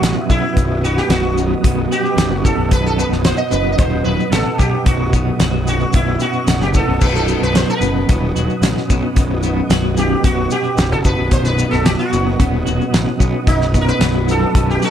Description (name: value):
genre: psychedelic rock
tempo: 112 BPM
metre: 4/4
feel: straight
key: B major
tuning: A4 = 440 Hz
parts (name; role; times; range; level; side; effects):
- sitar; melody; 0.0-14.9 s; D#4 to D#5; -21 LUFS; right 2 dB; slapback echo
- mellow tonewheel organ; sustained chords; 0.0-14.9 s; B4 to D#6; -30 LUFS; right 3 dB; slow rotary speaker, chorus vibrato
- twelve-string electric guitar; riff; 0.0-14.9 s; B1 to F#3; -19 LUFS; equal; tremolo, double-tracked left and right
- fuzz picked electric bass; bass; 0.0-14.8 s; B0 to B1; -19 LUFS; equal; overdrive
- damped 70s drum kit; drums; 0.0-14.7 s; crash cymbal, hi-hat, kick drum, snare drum; -16 LUFS; equal; none
- maracas; percussion; 0.0-14.9 s; none; -32 LUFS; left 7 dB; none
room: small room ambience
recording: none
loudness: -13 LUFS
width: side -9 dB against mid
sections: 0.0-14.9 A section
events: sitar solo 0.0-14.9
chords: 0.0 B